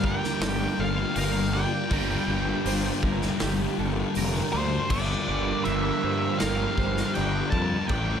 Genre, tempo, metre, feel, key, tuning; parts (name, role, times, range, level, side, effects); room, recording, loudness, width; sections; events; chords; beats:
rock, shoegaze and dream pop; 80 BPM; 4/4; straight; G dorian; A4 = 440 Hz
octave-fuzz lead guitar; melody; 0.0-8.2 s; C5 to A5; -31 LUFS; equal; distortion, slapback echo
analog string pad; sustained chords; 0.0-8.2 s; G3 to G5; -36 LUFS; right 2 dB; ensemble chorus
twelve-string electric guitar; arpeggios; 0.0-8.2 s; G4 to E5; -36 LUFS; right 10 dB; ensemble chorus, slapback echo
biting overdriven guitar; riff; 0.0-4.9 s; G2 to G3; -32 LUFS; right 1 dB
electric guitar through a small old amp; riff; 0.0-8.2 s; G2 to G4; -35 LUFS; right 12 dB; reverse reverb
thick fuzz guitar; riff; 0.0-8.2 s; G2 to A3; -30 LUFS; left 9 dB; distortion, wide subtle chorus
fuzz fingered electric bass; bass; 0.0-8.1 s; F1 to G2; -30 LUFS; equal; overdrive
raw garage drum kit; drums; 0.0-8.1 s; crash cymbal, hi-hat, kick drum, snare drum; -31 LUFS; equal
light reverb, small room ambience; -23 LUFS; side -8 dB against mid
0.0-4.9 A section; 4.9-8.2 B section
0.0 Gm7
0.42 1.16 | 1.91 2.66 3.41 4.16 | 4.91 5.66 6.41 7.16 | 7.91